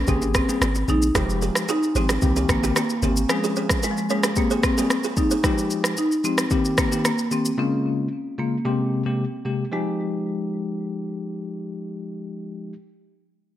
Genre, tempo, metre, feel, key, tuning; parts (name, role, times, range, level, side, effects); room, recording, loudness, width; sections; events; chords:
afrobeats; 112 BPM; 4/4; straight; F minor; A4 = 440 Hz
marimba with medium mallets; melody; 0.0-12.7 s; F3 to Eb4; -25 LUFS; equal; digital delay
punchy sub bass; bass; 0.0-3.3 s; F1 to C2; -24 LUFS; equal
bell-like tine electric piano; accompaniment; 0.1-12.7 s; C3 to Ab4; -26 LUFS; left 2 dB; medium stereo tremolo
afro-pop drum kit; drums; 0.1-7.6 s; kick drum, rim click, shaker; -24 LUFS; equal; gated reverb
congas and bongos; percussion; 0.1-3.2 s; -34 LUFS; right 4 dB
buzzing kalimba; riff; 1.2-5.4 s; Eb4 to Db5; -30 LUFS; right 7 dB; digital delay
light reverb; bright 1980s-style digital production; -20 LUFS; side -12 dB against mid
0.0-9.7 A section; 9.7-13.6 B section
0.1 Abmaj9; 1.2 Fm9; 2.2 Cm7; 3.3 Bbm7; 4.4 Abmaj9; 5.4 Fm9; 6.5 Cm7; 7.6 Bbm7; 8.7 Abmaj9; 9.7 Fm9